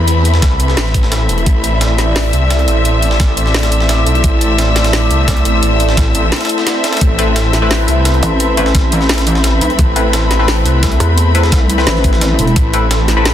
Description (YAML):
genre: dark technical drum and bass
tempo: 173 BPM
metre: 4/4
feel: straight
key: A minor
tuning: A4 = 441 Hz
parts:
  - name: sweeping resonant pad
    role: sustained chords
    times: 0.0-13.3 s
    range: A3 to E5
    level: -20 LUFS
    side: equal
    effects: chorus, phaser, sidechain pumping
  - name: snarling distorted saw bass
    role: bass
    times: 0.0-13.3 s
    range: E1 to E2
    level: -14 LUFS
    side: equal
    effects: distortion, tube saturation
  - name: rich studio string section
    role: texture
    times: 0.0-13.3 s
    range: C4 to E6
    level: -18 LUFS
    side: left 2 dB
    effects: sidechain pumping
  - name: breakbeat sampler-style drum kit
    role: drums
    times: 0.1-13.3 s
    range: hi-hat, snare drum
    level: -22 LUFS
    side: equal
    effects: high-pass filter on hats, high-pass filter on snare
  - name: drum and bass drum kit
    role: drums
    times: 0.1-13.3 s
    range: hi-hat, snare drum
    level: -18 LUFS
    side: equal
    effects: overdrive
  - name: electronic kick drum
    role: drums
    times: 0.4-12.6 s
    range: none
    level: -13 LUFS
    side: equal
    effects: overdrive
  - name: band-passed chord stab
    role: stabs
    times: 7.2-13.3 s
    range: A3 to B4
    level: -19 LUFS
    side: left 3 dB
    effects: chorus, phaser, dub echo
  - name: pulsing pluck wobble bass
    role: bass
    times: 8.2-12.5 s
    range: E1 to E2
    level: -13 LUFS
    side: equal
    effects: chorus
room: light reverb, digital ambience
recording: dense, heavily limited modern master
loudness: -10 LUFS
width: side -11 dB against mid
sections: 0.0-13.3 A section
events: break 6.3-7.0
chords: 0.0 Amadd9